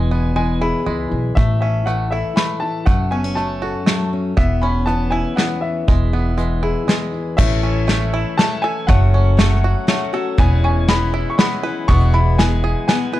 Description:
indie folk with a building arrangement; 120 BPM; 3/4; straight; E major; A4 = 441 Hz
warm upright piano; melody; 0.0-13.2 s; E5 to C#6; -24 LUFS; left 2 dB
fingerpicked steel-string acoustic guitar; accompaniment; 0.0-8.9 s; E2 to A4; -22 LUFS; left 2 dB
bluegrass banjo; arpeggios; 0.0-13.2 s; G#3 to B4; -26 LUFS; right 6 dB
upright bass; bass; 0.0-12.7 s; E1 to C#2; -18 LUFS; equal
soft brush drum kit; drums; 1.4-13.0 s; crash cymbal, hi-hat, kick drum, snare drum; -17 LUFS; equal
picked acoustic archtop guitar; accompaniment; 7.4-13.2 s; E2 to F#4; -23 LUFS; left 6 dB
light reverb, small room ambience; dark, warm production; -15 LUFS; side -15 dB against mid
0.0-7.4 A section; 7.4-13.2 B section
0.0 E; 1.4 A; 2.9 F#m; 4.4 C#m7/E; 5.9 E; 7.4 A; 8.9 F#m; 10.4 C#m7/E; 11.9 E

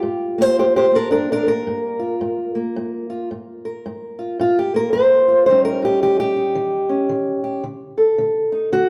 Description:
acoustic country blues, solo or duo; 111 BPM; 4/4; swing 60% on 8ths; G minor; A4 = 440 Hz
fingerpicked old ladder-braced acoustic guitar; solo; 0.0-8.9 s; G2 to C5; -19 LUFS; equal
wet large studio reverb, RT60 1.4 s; band playing live in one room; -18 LUFS; mono
0.0-8.9 A section
steel-string acoustic guitar solo 0.0-8.9
0.0 Gm7; 5.5 Eb7; 7.6 D5

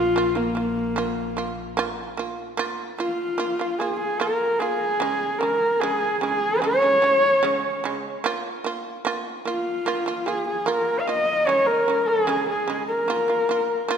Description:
mongolian traditional, Mongolian folk; 74 BPM; 4/4; straight; Bb yu mode; A4 = 440 Hz
dark horsehead fiddle; melody; 0.0-13.9 s; Bb3 to F5; -21 LUFS; equal; tape echo
shamisen; arpeggios; 0.0-14.0 s; Db3 to F4; -28 LUFS; right 5 dB
clear double bass; drone; 0.0-1.9 s; Bb1; -35 LUFS; left 2 dB
moderate scoring stage reverb, RT60 1.8 s; -21 LUFS; side -7 dB against mid
0.0-1.8 A section; 1.8-14.0 B section
0.0 Bb5; 5.0 Db5; 8.2 Bb5; 11.5 Db5; 13.1 Bb5

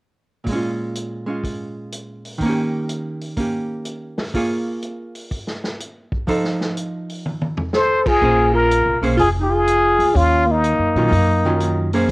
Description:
jazz, small-group swing and bop; 124 BPM; 4/4; swing 67% on 8ths; Bb dorian, Bb minor from 8.2 s; A4 = 440 Hz
archtop guitar, miked and amplified; accompaniment; 0.4-12.1 s; Bb2 to Db5; -22 LUFS; right 1 dB
vintage drum kit; drums; 0.5-12.1 s; crash cymbal, hi-hat, kick drum, snare drum, toms; -27 LUFS; equal
breathy alto saxophone; second line; 7.7-11.9 s; Bb3 to A4; -22 LUFS; right 1 dB
trumpet with plunger mute; melody; 7.8-11.9 s; Eb4 to C5; -16 LUFS; left 1 dB; cassette tape
upright bass; bass; 8.2-12.1 s; F1 to Bb2; -20 LUFS; equal
light reverb, small room ambience; home recording on cassette; -17 LUFS; side -22 dB against mid
0.5-8.2 A section; 8.2-12.1 B section
drum fill 7.2-7.7
0.5 Bbm7; 2.4 Eb7; 4.3 Bbm7; 6.3 F7; 8.2 Bbm9; 10.2 Ebm9

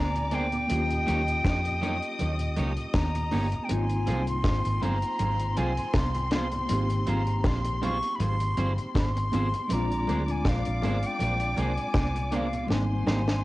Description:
lovers rock reggae; 80 BPM; 4/4; swing 55% on 16ths; Ab major; A4 = 438 Hz
breathy silver concert flute; melody; 0.0-13.4 s; F5 to Db6; -32 LUFS; left 1 dB; cassette tape, tape echo
warm studio string section; second line; 0.0-13.4 s; C4 to Eb6; -38 LUFS; left 1 dB; cassette tape
mellow tine electric piano; accompaniment; 0.0-13.4 s; G3 to Ab4; -35 LUFS; left 1 dB; medium stereo tremolo, cassette tape
vintage muted fingered electric bass; bass; 0.0-13.4 s; G1 to F2; -29 LUFS; equal
mellow tonewheel organ; accompaniment; 0.1-13.3 s; Eb2 to Db4; -39 LUFS; left 1 dB
electric guitar at the edge of break-up; stabs; 0.2-13.2 s; Bb3 to Db5; -36 LUFS; right 3 dB; cassette tape, analog delay
deep reggae drum kit; drums; 0.2-13.4 s; hi-hat, kick drum, snare drum; -29 LUFS; equal; cassette tape, analog delay
congas; percussion; 0.3-13.3 s; -36 LUFS; right 3 dB
light reverb, small room ambience; home recording on cassette, nothing above 10.9 kHz; -24 LUFS; side -18 dB against mid
0.0-13.4 A section
drum fill 12.7-13.4
0.0 Bb9; 0.7 Eb7; 3.7 Ab6; 9.7 Bb9; 12.7 Abmaj9

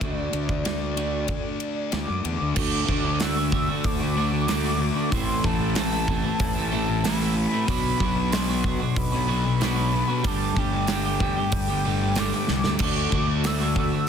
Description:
rock, shoegaze and dream pop; 94 BPM; 4/4; straight; D mixolydian; A4 = 440 Hz
mellow horn-like synth lead; melody; 0.0-14.1 s; D5 to E6; -30 LUFS; equal; chorus, analog delay
clean electric guitar; riff; 0.0-14.1 s; A2 to G4; -30 LUFS; right 11 dB; reverse reverb
thick fuzz guitar; riff; 0.0-14.1 s; G2 to D4; -29 LUFS; left 10 dB; distortion, wide subtle chorus
fuzz fingered electric bass; bass; 0.0-13.9 s; G1 to F#2; -28 LUFS; equal; overdrive
big rock drum kit; drums; 0.0-13.9 s; crash cymbal, hi-hat, kick drum, ride cymbal, snare drum; -28 LUFS; right 1 dB
overdriven semi-hollow guitar; riff; 2.6-14.1 s; G2 to D4; -30 LUFS; equal
little or no reverb; dense, heavily limited modern master; -22 LUFS; side -7 dB against mid
0.0-2.6 A section; 2.6-14.1 B section
drum fill 12.5-12.8
0.0 D; 5.1 Am; 7.7 Bm; 10.2 Gsus2; 12.8 D

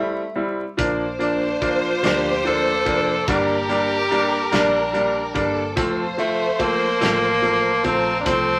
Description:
six-eight pop ballad; 48 BPM (dotted quarters); 6/8; straight; F major; A4 = 440 Hz
bright tenor saxophone; melody; 0.0-8.6 s; A3 to A4; -24 LUFS; equal
clear grand piano; accompaniment; 0.0-8.5 s; F3 to E4; -25 LUFS; equal
warm studio violin section; second line; 0.8-8.6 s; A4 to C5; -28 LUFS; equal
warm chamber string section; sustained chords; 0.8-8.6 s; Bb3 to D6; -34 LUFS; equal
vintage muted fingered electric bass; bass; 0.8-8.6 s; F1 to D2; -37 LUFS; equal
modern studio drum kit; drums; 0.8-8.5 s; hi-hat, kick drum, snare drum; -29 LUFS; equal
wet small room ambience, RT60 0.5 s; vinyl crackle; -20 LUFS; mono
0.0-8.6 A section
0.0 C; 0.8 Bb; 3.3 Gm; 5.8 F

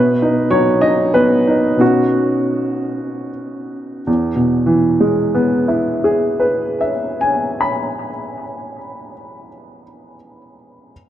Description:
neoclassical minimalist piano; 74-106 BPM; 3/4; rubato; E major; A4 = 440 Hz
clear upright piano; solo; 0.0-10.9 s; E2 to B5; -14 LUFS; equal; analog delay
moderate spring reverb, RT60 2.0 s, small room ambience; dark, warm production; -14 LUFS; side -11 dB against mid
0.0-4.1 A section; 4.1-8.7 B section
slowing down 0.0-4.1
0.0 Badd9; 4.1 E

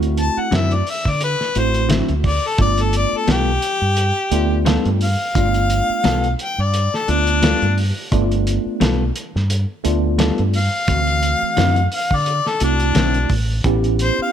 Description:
straight-eighth soul blues; 87 BPM; 4/4; swing 55% on 16ths; A4 = 440 Hz
mellow tine electric piano; accompaniment; 0.0-14.3 s; E3 to G4; -22 LUFS; right 2 dB; overdrive, medium stereo tremolo
deep dub fingered electric bass; bass; 0.0-14.2 s; G1 to D3; -19 LUFS; right 1 dB
cloth-damped thuddy drum kit; drums; 0.0-14.2 s; hi-hat, kick drum, snare drum; -22 LUFS; right 1 dB
bright harmonica; melody; 0.2-14.3 s; D4 to A5; -20 LUFS; left 3 dB; overdrive
semi-hollow electric guitar; stabs; 0.5-13.2 s; D3 to A4; -23 LUFS; left 4 dB
little or no reverb; -16 LUFS; side -9 dB against mid
0.0-14.3 A section
harmonica solo 0.0-14.3
0.0 D9; 2.6 G9; 10.9 D9; 13.6 A9

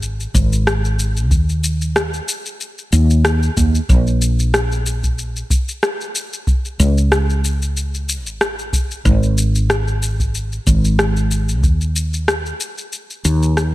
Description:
sunset chillout; 93 BPM; 4/4; swing 55% on 16ths; A4 = 442 Hz
woody fretless electric bass; bass; 0.0-13.7 s; G#1 to D#2; -16 LUFS; equal; lush chorus
electronic shaker and rim click; drums; 0.0-13.7 s; -21 LUFS; left 1 dB
electronic kick drum; drums; 0.3-11.8 s; -17 LUFS; equal
little or no reverb; -15 LUFS; side -17 dB against mid
0.0-13.7 A section
fade-out 12.5-13.7

